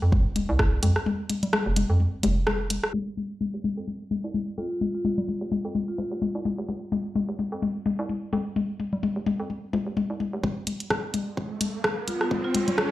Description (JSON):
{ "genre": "minimal techno", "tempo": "128 BPM", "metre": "4/4", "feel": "swing 57% on 16ths", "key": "unclear", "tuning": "A4 = 441 Hz", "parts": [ { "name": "hollow knocking FM bass", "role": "bass", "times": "0.0-10.4 s", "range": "Eb1 to F2", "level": "-27 LUFS", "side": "right 1 dB", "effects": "sidechain pumping, high-pass filter" }, { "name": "electronic kick drum", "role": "drums", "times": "0.1-0.7, 10.4-12.9 s", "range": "none", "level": "-26 LUFS", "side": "right 1 dB", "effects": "high-pass filter on kick" }, { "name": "electronic toms and congas", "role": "percussion", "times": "0.1-12.9 s", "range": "none", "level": "-28 LUFS", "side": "left 3 dB", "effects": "digital delay" }, { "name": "garage drum kit", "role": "drums", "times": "0.4-3.0, 10.7-12.9 s", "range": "crash cymbal, hi-hat, rim click", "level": "-28 LUFS", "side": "equal", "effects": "low-pass filter on hats, low-pass filter on snare, low-pass filter on cymbals" }, { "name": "marimba with medium hard mallets", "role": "melody", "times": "4.6-6.5, 12.1-12.6 s", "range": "F4", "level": "-32 LUFS", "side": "equal", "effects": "digital delay" }, { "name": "riser", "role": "sound effects", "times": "11.0-12.9 s", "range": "none", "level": "-33 LUFS", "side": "right 2 dB", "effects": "none" } ], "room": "moderate studio reverb, RT60 0.6 s", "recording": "played on a big sound system in a bare room, large studio reverb, low-pass filter", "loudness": "-24 LUFS", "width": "side -15 dB against mid", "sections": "0.0-2.9 A section; 2.9-10.4 B section; 10.4-12.9 C section", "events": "break 1.1-2.9; filter sweep 2.9-10.4; build-up 10.4-12.9; riser 11.0-12.9", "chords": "0.0 F5; 10.4 N.C." }